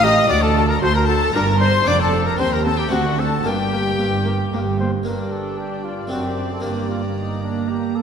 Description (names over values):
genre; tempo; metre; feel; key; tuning
classical, baroque-style concerto movement with solo episodes; 114 BPM; 3/4; straight; G minor; A4 = 440 Hz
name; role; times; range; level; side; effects
dark symphonic violin section; melody; 0.0-8.0 s; F#5 to Eb6; -26 LUFS; left 6 dB; none
mellow trumpet; melody; 0.0-8.0 s; D4 to Eb5; -23 LUFS; left 2 dB; none
rich chamber violin section; second line; 0.0-8.0 s; F#4 to Eb5; -26 LUFS; left 1 dB; none
harpsichord; accompaniment; 0.0-8.0 s; D2 to G4; -28 LUFS; left 1 dB; none
warm chamber viola section; accompaniment; 0.0-8.0 s; Bb3 to G4; -26 LUFS; right 2 dB; none
dark chamber double bass section; bass; 0.0-8.0 s; F1 to Eb2; -24 LUFS; right 3 dB; none
warm chamber cello section; bass; 0.0-8.0 s; D2 to A2; -24 LUFS; right 2 dB; none
room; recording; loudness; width
wet concert hall reverb, RT60 1.9 s; none; -17 LUFS; side -7 dB against mid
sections
0.0-5.1 A section; 5.1-8.0 B section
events
none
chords
0.3 D; 1.3 Gm; 1.9 Dm/F; 2.4 Cm/Eb; 2.9 D7; 3.5 Gm; 6.1 D7/F#; 6.6 Gm